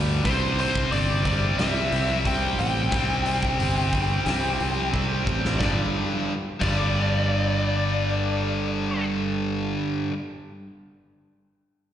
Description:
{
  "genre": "hard rock",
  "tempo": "90 BPM",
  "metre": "4/4",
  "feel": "straight",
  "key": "unclear",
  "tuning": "A4 = 441 Hz",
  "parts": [
    { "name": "distorted electric guitar", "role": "riff", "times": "0.0-10.1 s", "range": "G2 to C4", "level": "-30 LUFS", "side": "right 9 dB", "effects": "overdrive, slapback echo" },
    { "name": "high-gain distorted guitar", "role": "riff", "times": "0.0-10.1 s", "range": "G2 to C4", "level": "-27 LUFS", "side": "left 6 dB", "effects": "distortion, slapback echo" },
    { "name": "fingered electric bass", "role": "bass", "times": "0.0-9.8 s", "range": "G1 to D2", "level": "-26 LUFS", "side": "equal", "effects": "none" },
    { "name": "bluesy overdriven lead guitar", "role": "melody", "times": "0.3-9.1 s", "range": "C5 to G5", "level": "-28 LUFS", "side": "left 1 dB", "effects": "distortion, slapback echo" },
    { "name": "huge arena drum kit", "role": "drums", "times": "0.3-6.8 s", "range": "crash cymbal, hi-hat, kick drum, snare drum", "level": "-30 LUFS", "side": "equal", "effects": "none" }
  ],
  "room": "light reverb, studio reverb",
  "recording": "live gig heard through the venue's PA, recital hall reverb, nothing above 10.6 kHz",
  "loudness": "-22 LUFS",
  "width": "side -10 dB against mid",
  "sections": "0.0-5.6 A section; 5.6-8.3 B section",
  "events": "drum fill 4.9-5.6",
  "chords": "0.2 C5; 5.6 G5"
}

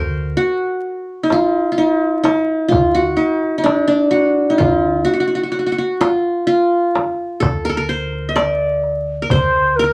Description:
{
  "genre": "Arabic maqam ensemble",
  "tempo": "128 BPM (eighths)",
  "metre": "10/8",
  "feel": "straight",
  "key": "D maqam saba",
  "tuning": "A4 = 438 Hz",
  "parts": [
    { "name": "qanun", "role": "melody", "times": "0.0-9.9 s", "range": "D4 to E5-50c", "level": "-18 LUFS", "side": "equal", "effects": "none" },
    { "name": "upright bass", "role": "bass", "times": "0.0-9.9 s", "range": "D2", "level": "-27 LUFS", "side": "equal", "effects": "none" },
    { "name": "darbuka", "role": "percussion", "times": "1.3-9.5 s", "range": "none", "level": "-24 LUFS", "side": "equal", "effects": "none" },
    { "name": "frame drum", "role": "percussion", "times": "1.3-9.5 s", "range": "none", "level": "-27 LUFS", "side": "equal", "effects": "none" },
    { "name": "bright reedy ney", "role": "second line", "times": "9.3-9.9 s", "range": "Bb4 to C5", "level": "-17 LUFS", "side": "equal", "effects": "none" }
  ],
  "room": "moderate studio reverb, RT60 0.5 s",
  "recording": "vinyl crackle",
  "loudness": "-17 LUFS",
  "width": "mono",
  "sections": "0.0-9.3 A section",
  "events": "none",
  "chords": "none"
}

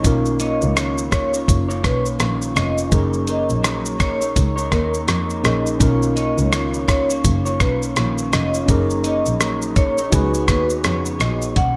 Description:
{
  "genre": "indie pop, bedroom pop",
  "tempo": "83 BPM",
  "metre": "4/4",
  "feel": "swing 60% on 16ths",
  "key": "F# major",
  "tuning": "A4 = 439 Hz",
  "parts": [
    { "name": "electric guitar through a small old amp", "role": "accompaniment", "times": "0.0-11.8 s", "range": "B2 to C#5", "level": "-27 LUFS", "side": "equal", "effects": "analog chorus, vibrato effect" },
    { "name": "mellow tine electric piano", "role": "accompaniment", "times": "0.0-11.6 s", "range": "C#4 to B4", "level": "-27 LUFS", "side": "equal", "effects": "none" },
    { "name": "muted double bass", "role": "bass", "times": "0.0-11.8 s", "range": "E#1 to E#2", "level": "-25 LUFS", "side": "equal", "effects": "none" },
    { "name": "dusty soul sampler-style drum kit", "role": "drums", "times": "0.0-11.8 s", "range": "hi-hat, kick drum, rim click, shaker", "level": "-23 LUFS", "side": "equal", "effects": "none" },
    { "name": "vibraphone with medium mallets", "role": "second line", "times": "0.4-11.8 s", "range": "A#4 to F#5", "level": "-28 LUFS", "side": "equal", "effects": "analog chorus, slapback echo" }
  ],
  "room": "light reverb, digital ambience",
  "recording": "none",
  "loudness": "-19 LUFS",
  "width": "mono",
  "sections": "0.0-11.6 A section",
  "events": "none",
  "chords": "0.0 Bmaj9#11; 2.9 F#6; 5.8 Bmaj9#11; 8.7 F#6; 10.1 C#7sus4"
}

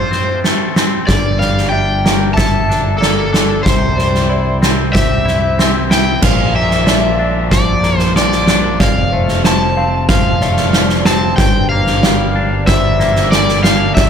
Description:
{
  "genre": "post-rock",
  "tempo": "93 BPM",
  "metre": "4/4",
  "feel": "straight",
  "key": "G dorian",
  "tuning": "A4 = 439 Hz",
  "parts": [
    { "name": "cranked stack guitar", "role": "melody", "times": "0.0-14.1 s", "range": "A4 to A5", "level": "-17 LUFS", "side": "left 1 dB", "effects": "overdrive, slapback echo" },
    { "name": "electric guitar through a small old amp", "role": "arpeggios", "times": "0.0-14.1 s", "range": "Bb4 to F5", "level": "-25 LUFS", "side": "right 1 dB", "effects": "lush chorus, slapback echo" },
    { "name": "twangy electric guitar", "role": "arpeggios", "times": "0.0-14.1 s", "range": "F2 to A4", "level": "-21 LUFS", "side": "left 5 dB", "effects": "slapback echo" },
    { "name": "oversized low-tuned drum kit", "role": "drums", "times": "0.1-14.1 s", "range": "crash cymbal, kick drum, snare drum", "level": "-14 LUFS", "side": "right 1 dB", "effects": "none" },
    { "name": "growling fingered electric bass", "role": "bass", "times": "1.1-14.1 s", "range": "F1 to C2", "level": "-18 LUFS", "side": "equal", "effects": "overdrive" }
  ],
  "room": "light reverb, small room ambience",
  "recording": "none",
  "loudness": "-11 LUFS",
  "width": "side -7 dB against mid",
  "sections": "0.0-6.2 A section; 6.2-14.1 B section",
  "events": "none",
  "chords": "0.0 F; 1.1 Gmadd9; 3.7 C; 6.2 Bb; 8.8 F; 11.4 Gm"
}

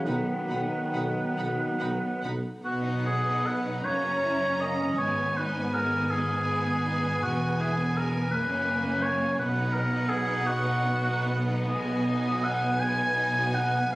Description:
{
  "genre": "classical",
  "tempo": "45-56 BPM (dotted quarters)",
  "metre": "6/8",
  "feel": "rubato",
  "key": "B major",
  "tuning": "A4 = 440 Hz",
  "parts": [
    { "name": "clear clarinet", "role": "second line", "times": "0.0-2.2 s", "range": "D#3", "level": "-39 LUFS", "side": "equal", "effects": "none" },
    { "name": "silver concert flute", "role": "second line", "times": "0.0-2.2 s", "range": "B4", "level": "-45 LUFS", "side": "equal", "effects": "none" },
    { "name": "warm oboe", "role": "second line", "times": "0.0-14.0 s", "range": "F#4 to G#5", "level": "-28 LUFS", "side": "equal", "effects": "none" },
    { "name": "mellow bassoon", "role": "accompaniment", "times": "0.0-2.3 s", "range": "D#3", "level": "-36 LUFS", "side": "equal", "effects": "none" },
    { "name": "mellow French horn section", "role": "sustained chords", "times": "0.0-2.3 s", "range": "F#3 to D#4", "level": "-35 LUFS", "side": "left 1 dB", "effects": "none" },
    { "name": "rich studio cello section", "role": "bass", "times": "0.0-13.9 s", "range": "E2 to B3", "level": "-33 LUFS", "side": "equal", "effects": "none" },
    { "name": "rich chamber violin section", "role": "melody", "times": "0.1-14.0 s", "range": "F#5 to B5", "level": "-38 LUFS", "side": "left 1 dB", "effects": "none" },
    { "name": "rich symphonic violin section", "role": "second line", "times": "0.1-14.0 s", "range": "G#3 to F#5", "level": "-37 LUFS", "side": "equal", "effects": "none" },
    { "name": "rich symphonic viola section", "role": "accompaniment", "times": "0.1-13.9 s", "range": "A#3 to D#4", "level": "-33 LUFS", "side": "right 1 dB", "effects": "none" },
    { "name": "clear symphonic double bass section", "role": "bass", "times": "0.1-13.9 s", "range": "E1 to B1", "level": "-34 LUFS", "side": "equal", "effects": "none" },
    { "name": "mellow tuba", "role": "bass", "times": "0.1-2.4 s", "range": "B1", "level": "-34 LUFS", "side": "right 1 dB", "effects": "none" }
  ],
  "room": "moderate recital hall reverb, RT60 1.6 s",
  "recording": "recorded on a phone in the room, club reverb, compression",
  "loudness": "-25 LUFS",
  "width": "side -19 dB against mid",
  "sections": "0.0-2.7 A section; 2.7-14.0 B section",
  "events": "none",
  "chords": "0.1 B; 3.9 F#; 5.0 G#m; 7.2 E; 8.3 F#; 9.4 B"
}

